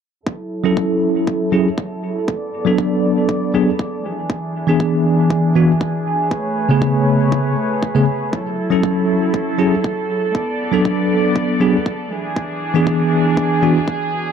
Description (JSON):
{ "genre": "nu-disco, nu disco", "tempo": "119 BPM", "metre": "4/4", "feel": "straight", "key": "F# minor", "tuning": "A4 = 438 Hz", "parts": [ { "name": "clear studio string section", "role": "sustained chords", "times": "0.3-14.3 s", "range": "E3 to D5", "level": "-21 LUFS", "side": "right 1 dB", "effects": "sidechain pumping, low-pass filter" }, { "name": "electronic kick drum", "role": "drums", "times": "0.3-14.0 s", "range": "none", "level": "-23 LUFS", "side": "equal", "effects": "high-pass filter on kick, high-pass filter on room" }, { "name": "bell-like tine electric piano", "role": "accompaniment", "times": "0.6-13.8 s", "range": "C#3 to A4", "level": "-17 LUFS", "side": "equal", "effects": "medium stereo tremolo, sidechain pumping, low-pass filter, dub echo" } ], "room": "moderate plate reverb, RT60 2.3 s", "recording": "dark, warm production", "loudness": "-15 LUFS", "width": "side -7 dB against mid", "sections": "0.3-14.3 A section", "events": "filter sweep on string section 0.3-14.3", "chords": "0.3 F#m7; 2.3 Bm7; 4.0 E7; 6.3 Amaj9; 8.3 F#m7; 10.3 Bm7; 12.1 E7" }